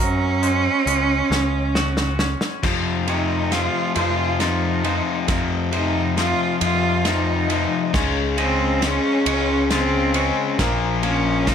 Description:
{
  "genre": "post-rock",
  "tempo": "45 BPM (dotted quarters)",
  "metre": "6/8",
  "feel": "straight",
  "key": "unclear",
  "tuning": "A4 = 441 Hz",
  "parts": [
    { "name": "rich cello", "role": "melody", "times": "0.0-11.5 s", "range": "C4 to F4", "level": "-22 LUFS", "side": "right 3 dB", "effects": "tape echo" },
    { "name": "twangy electric guitar", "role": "arpeggios", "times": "0.0-11.5 s", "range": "F2 to Gb4", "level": "-29 LUFS", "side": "left 1 dB", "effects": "harmonic tremolo, tape echo" },
    { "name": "twangy electric guitar", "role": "arpeggios", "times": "0.0-11.5 s", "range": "Bb4 to Db6", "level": "-33 LUFS", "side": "right 8 dB", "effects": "spring reverb, tape echo" },
    { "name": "growling picked electric bass", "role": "bass", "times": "0.0-11.5 s", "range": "Bb1 to Gb2", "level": "-24 LUFS", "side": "right 1 dB", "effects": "overdrive" },
    { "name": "loose indie drum kit", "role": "drums", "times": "0.4-11.5 s", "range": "crash cymbal, hi-hat, kick drum, ride cymbal, snare drum", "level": "-26 LUFS", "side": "equal", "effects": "none" },
    { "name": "overdriven semi-hollow guitar", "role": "riff", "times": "2.6-11.5 s", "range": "F2 to Db4", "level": "-22 LUFS", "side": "left 8 dB", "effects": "none" }
  ],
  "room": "moderate large studio reverb, RT60 1.0 s, small room reverb",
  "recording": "none",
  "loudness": "-18 LUFS",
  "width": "side -8 dB against mid",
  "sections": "0.0-2.6 A section; 2.6-11.5 B section",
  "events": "drum fill 1.3-2.6, 2.6-11.5; build-up 2.6-11.5",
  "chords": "0.0 Gbsus2; 2.6 Fm; 7.9 Db; 10.6 Bbm"
}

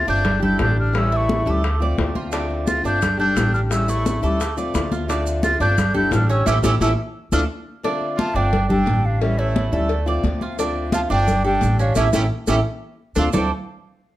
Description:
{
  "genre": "latin, Cuban son and guajira",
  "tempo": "174 BPM",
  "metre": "4/4",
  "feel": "straight",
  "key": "D minor",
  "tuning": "A4 = 440 Hz",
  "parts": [
    { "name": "mellow hollow silver concert flute", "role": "melody", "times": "0.0-13.3 s", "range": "C#5 to A6", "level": "-24 LUFS", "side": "equal", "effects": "none" },
    { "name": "bright trumpet", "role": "second line", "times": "0.0-13.2 s", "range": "A3 to F4", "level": "-31 LUFS", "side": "right 3 dB", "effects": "none" },
    { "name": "picked steel-string acoustic guitar", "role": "accompaniment", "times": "0.0-13.5 s", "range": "D3 to G4", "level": "-25 LUFS", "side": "left 2 dB", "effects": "none" },
    { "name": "Cuban tres", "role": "arpeggios", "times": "0.0-13.5 s", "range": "C#4 to D5", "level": "-26 LUFS", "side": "right 4 dB", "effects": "none" },
    { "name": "upright bass", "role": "bass", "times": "0.1-13.5 s", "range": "G1 to D2", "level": "-22 LUFS", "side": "equal", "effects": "none" },
    { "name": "bongos and cowbell", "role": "percussion", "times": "0.1-13.4 s", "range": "none", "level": "-29 LUFS", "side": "left 4 dB", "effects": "none" },
    { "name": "congas", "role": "percussion", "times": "0.1-13.4 s", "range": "none", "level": "-25 LUFS", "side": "left 1 dB", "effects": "none" },
    { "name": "maracas", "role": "percussion", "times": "2.3-7.4, 10.6-13.4 s", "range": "none", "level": "-36 LUFS", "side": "right 7 dB", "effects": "none" }
  ],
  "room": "moderate large studio reverb, RT60 0.9 s",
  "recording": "none",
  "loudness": "-17 LUFS",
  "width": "side -15 dB against mid",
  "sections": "0.0-7.8 A section; 7.8-13.3 B section",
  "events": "band accent 6.5-7.8, 12.0-13.3; drum fill 6.8-7.8, 12.0-13.3",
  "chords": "0.3 Gsus2; 0.9 A7; 1.6 Dm7; 3.0 Gsus2; 3.7 A7; 4.4 Dm7; 5.8 Gsus2; 6.5 A7; 7.1 Dm7; 8.5 Gsus2; 9.2 A7; 9.9 Dm7; 11.3 Gsus2; 12.0 A7; 12.7 Dm7"
}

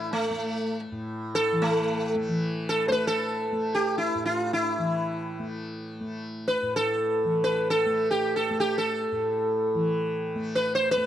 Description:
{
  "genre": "indian classical, Hindustani",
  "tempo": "free time",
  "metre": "none",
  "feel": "none",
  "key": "unclear",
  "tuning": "A4 = 441 Hz",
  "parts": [
    { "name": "sitar", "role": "melody", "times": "0.0-11.1 s", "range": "A3 to C5", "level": "-25 LUFS", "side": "equal", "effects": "none" },
    { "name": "tanpura", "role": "drone", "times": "0.0-11.1 s", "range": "A2 to A3", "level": "-32 LUFS", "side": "left 1 dB", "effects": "none" }
  ],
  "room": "little or no reverb",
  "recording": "dry, close 1970s-style studio recording",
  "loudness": "-24 LUFS",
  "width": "side -11 dB against mid",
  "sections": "0.0-2.3 A section; 2.3-11.1 A section",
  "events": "none",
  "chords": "none"
}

